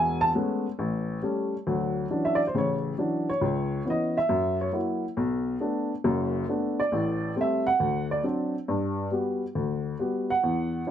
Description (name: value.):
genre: solo jazz.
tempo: 137 BPM.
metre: 4/4.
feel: swing 66% on 8ths.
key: D major.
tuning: A4 = 440 Hz.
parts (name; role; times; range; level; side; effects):
dark upright piano; solo; 0.0-10.9 s; E1 to A5; -25 LUFS; equal; none.
room: moderate club reverb, RT60 0.5 s.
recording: none.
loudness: -25 LUFS.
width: side -9 dB against mid.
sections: 0.0-1.7 A section; 1.7-10.9 A section.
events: upright piano solo 0.0-10.9.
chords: 0.0 Amaj9; 0.8 A7; 1.7 Dmaj9; 3.4 C#m9; 4.3 F#7; 5.2 Bm7; 6.9 Am7; 7.8 D7; 8.7 Gmaj7.